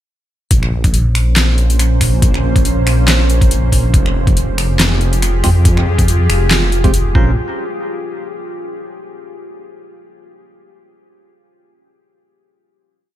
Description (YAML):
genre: deep dubstep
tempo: 140 BPM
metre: 4/4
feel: swing 56% on 16ths, half-time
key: Bb dorian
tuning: A4 = 439 Hz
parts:
  - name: deep dark ambient pad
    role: sustained chords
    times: 1.1-7.4 s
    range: Bb3 to C5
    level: -22 LUFS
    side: right 1 dB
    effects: chorus, built-in reverb
  - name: dark detuned saw bass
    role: bass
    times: 0.5-7.3 s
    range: F1 to F2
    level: -14 LUFS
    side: equal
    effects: none
  - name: dubstep drum kit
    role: drums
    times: 0.5-7.0 s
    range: finger snaps, handclaps, hi-hat, snare drum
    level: -17 LUFS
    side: left 1 dB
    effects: overdrive
  - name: electronic kick drum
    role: drums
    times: 0.5-7.2 s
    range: none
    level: -14 LUFS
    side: equal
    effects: overdrive
  - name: percussive organ stab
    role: stabs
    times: 5.4-7.3 s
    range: Ab3 to C5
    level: -23 LUFS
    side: right 3 dB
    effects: chorus, phaser, dub echo
room: little or no reverb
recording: none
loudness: -11 LUFS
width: side -13 dB against mid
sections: 0.5-7.4 drop; 7.4-9.1 final hit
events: drop 0.5-7.4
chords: 0.5 Bbmadd9; 3.9 Fmadd9; 7.2 Bbmadd9; 7.4 N.C.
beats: | 0.51 0.94 1.37 1.79 | 2.22 2.65 3.08 3.51 | 3.94 4.37 4.79 5.22 | 5.65 6.08 6.51 6.94